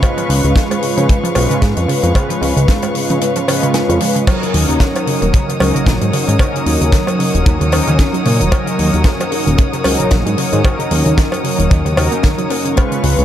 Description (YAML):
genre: nu-disco, nu disco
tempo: 113 BPM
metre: 4/4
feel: swing 56% on 16ths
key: Eb minor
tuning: A4 = 439 Hz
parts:
  - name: mellow synth brass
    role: accompaniment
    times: 0.0-13.2 s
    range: Gb3 to Cb5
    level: -17 LUFS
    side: equal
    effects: chorus, sidechain pumping, analog delay
  - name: rich chamber violin section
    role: sustained chords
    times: 0.0-13.2 s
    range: Cb5 to Eb6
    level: -24 LUFS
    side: left 2 dB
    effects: vintage 12-bit sampler grit, sidechain pumping
  - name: wide unison pluck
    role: arpeggios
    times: 0.0-13.2 s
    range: Db3 to Ab4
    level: -22 LUFS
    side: right 2 dB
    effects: sidechain pumping, analog delay
  - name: kick drum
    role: drums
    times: 0.0-12.9 s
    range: none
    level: -14 LUFS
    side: equal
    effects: none
  - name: tight funk drum kit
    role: drums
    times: 0.0-13.2 s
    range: crash cymbal, hi-hat, snare drum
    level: -23 LUFS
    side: left 2 dB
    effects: analog delay
  - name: cowbell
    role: percussion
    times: 0.0-12.9 s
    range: none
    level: -25 LUFS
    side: equal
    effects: none
  - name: fat analog bass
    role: bass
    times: 0.3-13.2 s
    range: Eb1 to Db3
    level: -15 LUFS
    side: equal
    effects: none
room: light reverb, small room ambience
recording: echo-heavy mix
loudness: -12 LUFS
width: side -11 dB against mid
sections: 0.0-13.2 A section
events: kick drops out 3.2-4.3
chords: 0.0 Db7; 4.3 Ebm7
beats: | 0.03 0.56 1.09 1.62 | 2.15 2.68 3.21 3.75 | 4.28 4.81 5.34 5.87 | 6.40 6.93 7.46 7.99 | 8.52 9.05 9.59 10.12 | 10.65 11.18 11.71 12.24 | 12.77